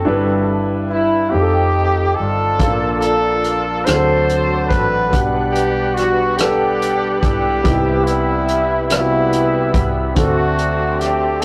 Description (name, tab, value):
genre	slow gospel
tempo	48 BPM (dotted quarters)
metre	6/8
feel	straight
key	G major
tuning	A4 = 441 Hz
part	clear trumpet	melody	0.0-11.4 s	E4 to C5	-22 LUFS	equal	slapback echo
part	warm horn section	melody	0.0-11.4 s	G3 to F#5	-24 LUFS	equal	none
part	warm grand piano	accompaniment	0.0-11.4 s	G2 to F#5	-23 LUFS	equal	none
part	muted French horn section	sustained chords	0.0-11.4 s	C3 to B4	-32 LUFS	equal	none
part	hollow-body short-scale fingered electric bass	bass	0.0-11.4 s	F1 to D2	-26 LUFS	equal	none
part	overdriven tonewheel organ	sustained chords	2.6-11.4 s	C3 to F#5	-27 LUFS	equal	chorus vibrato, slow rotary speaker
part	warm soul drum kit	drums	2.6-11.4 s	hi-hat, kick drum, rim click	-22 LUFS	equal	none
room	moderate studio reverb, RT60 0.6 s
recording	rough rehearsal-room recording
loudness	-16 LUFS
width	mono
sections	0.0-11.4 A section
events	none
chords	0.1 G6; 1.3 F7; 2.6 Bbmaj7; 3.9 D7; 5.1 Gmaj7/B; 7.7 Cmaj7; 10.2 D7